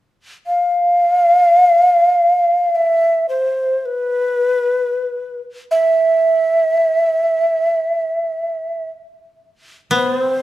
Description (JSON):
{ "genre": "japanese traditional, Japanese chamber music", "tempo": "free time", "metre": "none", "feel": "none", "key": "unclear", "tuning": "A4 = 440 Hz", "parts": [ { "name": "breathy mellow shakuhachi", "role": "melody", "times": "0.5-10.4 s", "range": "B4 to F5", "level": "-14 LUFS", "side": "equal", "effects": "none" }, { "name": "koto", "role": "second line", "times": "9.9-10.4 s", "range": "C4", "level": "-17 LUFS", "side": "left 2 dB", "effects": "none" } ], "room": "moderate recital hall reverb, RT60 1.6 s", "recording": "none", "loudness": "-13 LUFS", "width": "side -15 dB against mid", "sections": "0.0-9.9 A section", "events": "none", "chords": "none" }